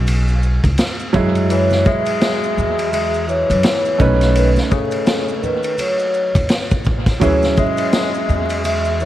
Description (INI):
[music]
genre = hip hop, jazz-hop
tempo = 84 BPM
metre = 4/4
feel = swing 59% on 16ths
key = F# minor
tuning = A4 = 440 Hz
[part]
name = warm concert grand piano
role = accompaniment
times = 0.0-9.1 s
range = E3 to B4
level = -22 LUFS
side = right 4 dB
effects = none
[part]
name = upright bass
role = bass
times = 0.0-9.1 s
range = A1 to F#2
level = -18 LUFS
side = equal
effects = none
[part]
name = vintage drum kit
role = drums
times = 0.1-8.8 s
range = hi-hat, kick drum, ride cymbal, snare drum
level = -20 LUFS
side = equal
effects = none
[part]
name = congas and maracas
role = percussion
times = 0.1-9.1 s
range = none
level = -32 LUFS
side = right 2 dB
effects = none
[part]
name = vibraphone with soft mallets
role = melody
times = 1.5-9.1 s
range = A4 to E5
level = -20 LUFS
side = equal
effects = dub echo
[part]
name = breathy tenor saxophone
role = second line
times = 1.5-9.1 s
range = C#3 to G#3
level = -24 LUFS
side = left 7 dB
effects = dub echo
[sound]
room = light reverb, small room ambience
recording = echo-heavy mix, vinyl crackle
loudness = -14 LUFS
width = side -13 dB against mid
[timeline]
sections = 0.0-9.1 A section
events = none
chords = 0.0 C#m7; 1.1 F#sus2; 4.0 B9; 7.2 Dmaj9#11